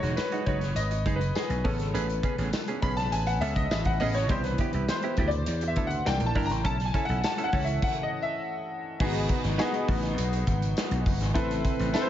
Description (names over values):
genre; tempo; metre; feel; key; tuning
polished 1980s jazz-funk pop; 102 BPM; 4/4; straight; unclear; A4 = 440 Hz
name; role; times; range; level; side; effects
clear concert grand piano; accompaniment; 0.0-12.1 s; E3 to B5; -30 LUFS; left 1 dB; analog chorus
semi-hollow electric guitar; riff; 0.0-7.7 s; G#3 to Bb4; -35 LUFS; right 5 dB; wide subtle chorus
vintage slap bass; bass; 0.0-11.9 s; E1 to E2; -29 LUFS; equal; none
modern studio drum kit; drums; 0.0-12.1 s; crash cymbal, hi-hat, kick drum, snare drum; -30 LUFS; equal; gated reverb
tambourine; percussion; 0.2-12.1 s; none; -42 LUFS; left 8 dB; none
room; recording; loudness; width
light reverb; nothing above 7.6 kHz; -25 LUFS; side -11 dB against mid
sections
0.0-9.0 A section; 9.0-12.1 B section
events
grand piano solo 0.0-9.0; stop 7.8-9.0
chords
0.0 Emaj9 (rootless); 1.6 Amaj9; 4.3 Cmaj7; 6.1 C9; 6.7 B9sus4; 9.0 G#m7; 11.4 Amadd9